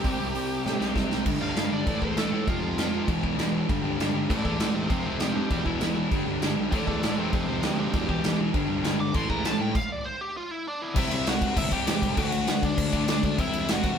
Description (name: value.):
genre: punk rock.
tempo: 198 BPM.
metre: 4/4.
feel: straight.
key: G mixolydian.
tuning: A4 = 438 Hz.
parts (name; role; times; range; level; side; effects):
bluesy overdriven lead guitar; melody; 0.0-14.0 s; D4 to D6; -32 LUFS; right 1 dB; distortion.
crunchy overdriven guitar; riff; 0.0-9.7 s; E2 to C4; -32 LUFS; right 7 dB; none.
sludgy distorted guitar; riff; 0.0-14.0 s; E2 to D4; -29 LUFS; left 7 dB; overdrive.
fuzz picked electric bass; bass; 0.0-14.0 s; E1 to A2; -33 LUFS; equal; overdrive.
big rock drum kit; drums; 0.0-13.9 s; crash cymbal, hi-hat, kick drum, snare drum; -27 LUFS; right 1 dB; none.
room: light reverb.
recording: band playing live in one room.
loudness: -24 LUFS.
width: side -7 dB against mid.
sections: 0.0-1.3 A section; 1.3-11.0 B section; 11.0-14.0 C section.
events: half time 0.0-1.3; drum fill 0.7-1.3; lead electric guitar solo 1.3-11.0; stop 9.8-11.0.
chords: 0.0 C5; 1.3 G5; 1.9 A5; 2.5 F5; 3.1 E5; 3.7 G5; 4.3 A5; 4.9 F5; 5.5 E5; 6.1 G; 6.7 A5; 7.3 F5; 7.9 Em; 8.5 G5; 9.1 A5; 9.8 N.C.; 11.0 C; 12.2 D; 13.4 C/E.